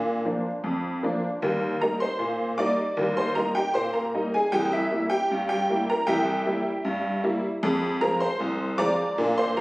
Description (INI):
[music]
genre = ragtime piano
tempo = 77 BPM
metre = 2/4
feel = straight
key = Eb major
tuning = A4 = 440 Hz
[part]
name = honky-tonk upright piano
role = solo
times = 0.0-9.6 s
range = C2 to D6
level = -23 LUFS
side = equal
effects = none
[sound]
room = moderate club reverb, RT60 0.6 s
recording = recorded on a phone in the room, studio reverb, compression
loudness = -23 LUFS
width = side -21 dB against mid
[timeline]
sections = 0.0-9.6 A section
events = none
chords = 0.0 Bb; 1.4 Eb; 4.5 C7; 7.6 Fm